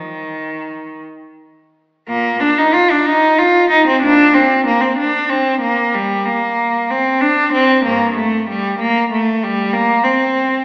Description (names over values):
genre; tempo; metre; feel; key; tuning
classical, baroque-style suite movement for unaccompanied cello; 63 BPM (dotted quarters); 6/8; uneven beats, rubato; Bb major; A4 = 444 Hz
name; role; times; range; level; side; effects
clear cello; solo; 0.0-10.6 s; G2 to F4; -12 LUFS; equal; none
room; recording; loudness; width
wet recital hall reverb, RT60 1.7 s; heard from further back in the room, AM radio sound; -12 LUFS; side -24 dB against mid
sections
0.0-2.1 A section; 2.1-10.6 A section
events
none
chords
none